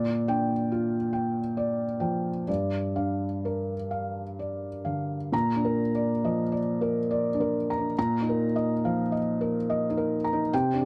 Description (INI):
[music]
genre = neoclassical minimalist piano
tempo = 61-72 BPM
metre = 3/4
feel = rubato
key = unclear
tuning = A4 = 439 Hz
[part]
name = felt-muted upright piano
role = solo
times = 0.0-10.9 s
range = G2 to Bb5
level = -28 LUFS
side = equal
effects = none
[sound]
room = light reverb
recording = close, detailed microphones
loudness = -28 LUFS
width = mono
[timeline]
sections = 0.0-5.3 A section; 5.3-10.9 B section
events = none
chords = 0.0 Bb6; 2.5 Gm7; 5.3 Bb; 8.0 Ebsus2/Bb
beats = 0.69 1.55 | 2.48 3.45 4.39 | 5.33 6.21 7.10 | 7.97 8.83 9.68 | 10.52